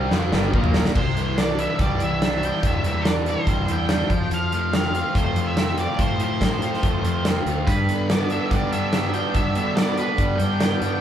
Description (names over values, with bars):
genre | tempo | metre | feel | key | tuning
classic rock | 143 BPM | 4/4 | straight | unclear | A4 = 440 Hz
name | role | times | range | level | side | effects
bright tonewheel organ | sustained chords | 0.0-1.0 s | F3 to C5 | -36 LUFS | equal | none
raw garage guitar | riff | 0.0-11.0 s | G2 to F4 | -26 LUFS | right 4 dB | overdrive
sludgy distorted guitar | riff | 0.0-11.0 s | G2 to F4 | -27 LUFS | left 5 dB | overdrive
fuzz fingered electric bass | bass | 0.0-11.0 s | G1 to B2 | -27 LUFS | equal | overdrive
big rock drum kit | drums | 0.1-10.9 s | crash cymbal, hi-hat, kick drum, snare drum, toms | -23 LUFS | equal | none
octave-fuzz lead guitar | melody | 1.0-11.0 s | B4 to G5 | -28 LUFS | equal | distortion
room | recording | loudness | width
moderate studio ambience, RT60 0.5 s | band playing live in one room | -19 LUFS | side -10 dB against mid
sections
1.0-11.0 A section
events
drum fill 0.1-1.0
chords
0.1 G; 0.5 Bb5; 1.0 Cadd9; 4.1 F; 7.7 G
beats
0.12 0.54 | 0.96 1.38 1.80 2.22 | 2.64 3.06 3.48 3.90 | 4.32 4.73 5.15 5.57 | 5.99 6.41 6.83 7.25 | 7.67 8.09 8.51 8.93 | 9.35 9.77 10.19 10.61